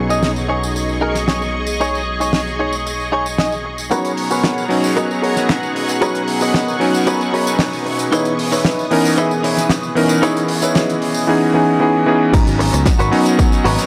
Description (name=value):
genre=nu-disco, nu disco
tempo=114 BPM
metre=4/4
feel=straight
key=G# minor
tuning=A4 = 440 Hz
part: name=warm electric grand piano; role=accompaniment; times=0.0-13.9 s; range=E3 to A#5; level=-20 LUFS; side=equal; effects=sidechain pumping, analog delay
part: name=string machine, full ensemble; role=sustained chords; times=0.0-13.9 s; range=B3 to D#6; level=-26 LUFS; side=equal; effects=phaser, ensemble chorus, sidechain pumping
part: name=modern bright fingered electric bass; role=bass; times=0.0-3.9, 12.3-13.8 s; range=G#1 to C#2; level=-24 LUFS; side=equal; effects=none
part: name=direct-recorded clean electric guitar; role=riff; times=0.1-13.9 s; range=D#4 to E5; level=-23 LUFS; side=equal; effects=lush chorus, low-pass filter, analog delay
part: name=tambourine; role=percussion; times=0.1-13.9 s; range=none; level=-32 LUFS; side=equal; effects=none
part: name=damped 70s drum kit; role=drums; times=0.2-13.9 s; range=crash cymbal, finger snaps, hi-hat, snare drum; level=-24 LUFS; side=equal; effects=studio ambience
part: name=electronic kick drum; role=drums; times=3.9-13.5 s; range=none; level=-20 LUFS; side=equal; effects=overdrive, high-pass filter on kick, studio ambience, high-pass filter on room
room=light reverb, small room ambience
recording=dry, gritty hardware recording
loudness=-17 LUFS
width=mono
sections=0.0-3.9 A section; 3.9-12.3 B section; 12.3-13.9 C section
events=build-up 3.9-12.3; filter sweep on clean electric guitar 3.9-12.3; drop 12.3-13.9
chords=0.0 B69; 8.1 C#m9; 12.3 G#m11